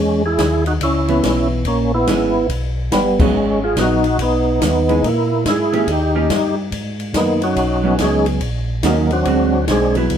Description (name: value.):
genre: soul jazz organ trio.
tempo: 142 BPM.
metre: 4/4.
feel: swing 65% on 8ths.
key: unclear.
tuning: A4 = 441 Hz.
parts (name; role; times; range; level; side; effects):
percussive tonewheel organ; melody; 0.0-10.0 s; D#3 to G#4; -17 LUFS; right 1 dB; slow rotary speaker, overdrive, chorus vibrato, plate reverb.
mellow tonewheel organ; bass; 0.0-10.2 s; G1 to A#2; -21 LUFS; equal; chorus vibrato, slow rotary speaker.
open jazz drum kit; drums; 0.4-10.2 s; crash cymbal, hi-hat, kick drum, ride cymbal, snare drum; -23 LUFS; left 1 dB; none.
vintage hollow-body jazz guitar; accompaniment; 1.1-10.2 s; D3 to G4; -21 LUFS; right 2 dB; none.
room: wet club reverb, RT60 0.6 s.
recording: heard from further back in the room.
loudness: -14 LUFS.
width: side -8 dB against mid.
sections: 0.0-6.7 A section; 6.7-10.2 B section.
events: band accent 3.1; tonewheel organ solo 6.7-10.2.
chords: 0.0 C#m9; 1.7 A#m7b5; 2.5 D#aug; 3.3 G#m7; 5.0 A#m7b5; 5.9 D#7; 6.7 G#m11; 8.4 D#m7; 9.3 D7#11.